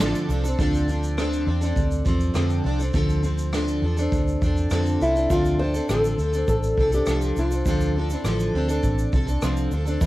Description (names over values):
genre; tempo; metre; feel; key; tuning
acoustic pop; 102 BPM; 4/4; straight; D minor; A4 = 441 Hz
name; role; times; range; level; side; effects
picked plugged-in steel-string acoustic guitar; accompaniment; 0.0-10.1 s; D3 to A4; -25 LUFS; equal; double-tracked left and right, cassette tape
vintage muted fingered electric bass; bass; 0.0-10.1 s; A1 to F2; -24 LUFS; equal; none
jazz brush drum kit; drums; 0.0-10.1 s; kick drum, rim click, shaker, snare drum; -27 LUFS; equal; cassette tape
tube shaker; percussion; 0.0-0.6, 5.3-10.1 s; none; -46 LUFS; right 8 dB; none
nylon-string guitar; melody; 5.0-8.5 s; E4 to C5; -24 LUFS; left 1 dB; none
room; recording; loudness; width
light reverb; home recording on cassette; -20 LUFS; side -16 dB against mid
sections
0.6-5.3 A section; 5.3-10.1 B section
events
none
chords
0.0 Dm7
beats
| 0.58 1.17 1.76 2.35 | 2.94 3.53 4.12 4.71 | 5.30 5.89 6.48 7.07 | 7.66 8.25 8.83 9.42 | 10.01